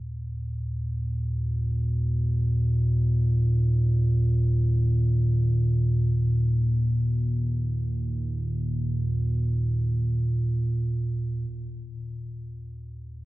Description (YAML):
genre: ambient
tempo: free time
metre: none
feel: none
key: unclear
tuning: A4 = 440 Hz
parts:
  - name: deep rumbling drone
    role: solo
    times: 0.0-13.2 s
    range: Eb2 to Bb2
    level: -23 LUFS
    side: equal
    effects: built-in reverb
room: wet cathedral reverb, RT60 4.9 s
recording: worn, warbling old tape, cassette tape, warbly pitch drift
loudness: -23 LUFS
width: side -18 dB against mid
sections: 0.0-11.5 A section; 11.5-13.2 A section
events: none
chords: 0.0 Eb5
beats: free time